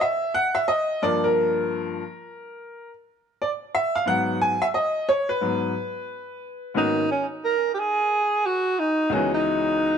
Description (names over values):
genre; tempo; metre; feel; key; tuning
hip hop; 89 BPM; 4/4; swing 62% on 16ths; unclear; A4 = 442 Hz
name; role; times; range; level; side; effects
bright upright piano; accompaniment; 0.0-10.0 s; C#2 to G#5; -22 LUFS; left 1 dB; none
breathy alto saxophone; melody; 6.8-10.0 s; C#4 to A#4; -21 LUFS; right 2 dB; analog delay
room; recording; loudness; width
moderate echo chamber reverb, RT60 1.4 s; dark, warm production; -21 LUFS; side -7 dB against mid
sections
0.0-6.8 A section; 6.8-10.0 B section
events
upright piano solo 0.0-6.8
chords
0.0 N.C.; 1.0 Gm7; 4.1 G#m7; 6.8 G#m11; 9.1 C#m11